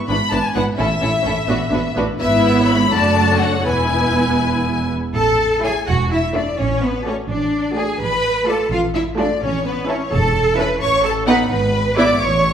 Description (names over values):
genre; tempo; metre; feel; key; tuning
quick classical-period movement for string orchestra; 85 BPM (dotted quarters); 6/8; rubato; A major; A4 = 440 Hz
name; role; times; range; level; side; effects
rich studio violin section; melody; 0.1-12.5 s; B4 to D6; -21 LUFS; left 4 dB; none
rich studio violin section; second line; 0.1-12.1 s; E4 to A5; -24 LUFS; left 2 dB; none
dark studio viola section; accompaniment; 0.1-12.1 s; A3 to F#4; -21 LUFS; right 2 dB; none
rich studio double bass section; bass; 0.1-12.5 s; E1 to A1; -23 LUFS; right 2 dB; none
warm studio cello section; bass; 0.1-12.5 s; E2 to D5; -20 LUFS; right 2 dB; none
room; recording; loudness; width
wet recital hall reverb, RT60 1.5 s; recorded in a church or concert hall; -15 LUFS; side -8 dB against mid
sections
0.0-5.2 A section; 5.2-12.5 B section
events
none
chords
0.0 E7/G#; 0.8 A; 1.5 Bm7/A; 2.2 E/G#; 2.9 D/F#; 3.7 E; 5.2 A; 6.6 D/A; 8.0 Dm/A; 9.4 A; 10.8 B7/A; 11.5 E7/G#